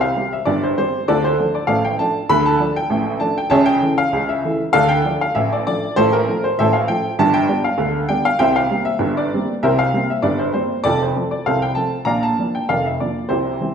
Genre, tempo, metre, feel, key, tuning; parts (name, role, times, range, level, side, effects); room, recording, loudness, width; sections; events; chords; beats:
ragtime piano; 98 BPM; 2/4; swing 54% on 16ths; F major from 6.0 s; A4 = 441 Hz
warm upright piano; solo; 0.0-13.7 s; F1 to B5; -16 LUFS; equal
wet recital hall reverb, RT60 1.6 s; recorded in a church or concert hall; -16 LUFS; side -7 dB against mid
0.0-13.7 A section
0.0 C5; 1.1 Dm; 3.5 A/C#; 4.7 Dm; 6.0 F/A; 7.2 G; 8.4 C7; 10.9 F; 12.1 Bb
0.47 | 1.08 1.69 | 2.31 2.92 | 3.53 4.14 | 4.75 5.36 | 5.97 6.58 | 7.19 7.80 | 8.41 9.02 | 9.63 10.24 | 10.85 11.46 | 12.07 12.69 | 13.30